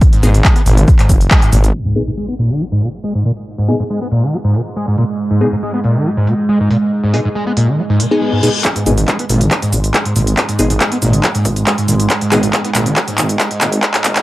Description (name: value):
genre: driving peak-time techno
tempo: 139 BPM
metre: 4/4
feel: straight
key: G# minor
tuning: A4 = 440 Hz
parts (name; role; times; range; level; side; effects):
- electronic kick drum; drums; 0.0-1.4, 8.6-13.9 s; none; -12 LUFS; equal; high-pass filter on kick, high-pass filter on room
- techno drum kit; drums; 0.0-14.2 s; crash cymbal, handclaps, hi-hat, shaker; -17 LUFS; equal; sidechain pumping on hats, low-pass filter on hats, sidechain pumping on perc, low-pass filter on perc, low-pass filter on snare, sidechain pumping on cymbals, low-pass filter on cymbals, low-pass filter on room
- screaming distorted acid line; riff; 0.1-14.2 s; G#2 to B3; -16 LUFS; equal; distortion, ensemble chorus, sidechain pumping
- wavetable chord stab; stabs; 0.2-12.4 s; B3 to G#4; -19 LUFS; left 2 dB; sidechain pumping, tape echo
- detuned saw bass; bass; 0.2-1.7, 8.9-14.2 s; F#1 to G#1; -14 LUFS; equal; sidechain pumping
- overtone-sweeping drone; drone; 3.6-14.2 s; G#2 to G#3; -20 LUFS; right 2 dB; chorus, built-in reverb, sidechain pumping
- impact and reverse cymbal; sound effects; 1.7-3.5, 8.0-8.6 s; none; -24 LUFS; left 2 dB; none
room: light reverb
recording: dry, gritty hardware recording, cassette tape, high-pass filter, low-pass filter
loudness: -12 LUFS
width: side -17 dB against mid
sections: 0.0-1.7 A section; 1.7-8.6 B section; 8.6-14.2 C section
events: band accent 1.3; impact 1.7-3.5; filter sweep on drum 1.7-8.6; filter sweep on acid bass 1.7-8.6, 8.6-14.2; filter sweep on synth stab 1.7-8.6, 8.6-14.2; filter sweep 1.7-8.6; reverse cymbal 8.0-8.6; build-up 8.6-14.2; drum fill 8.6-14.2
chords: 0.0 G#m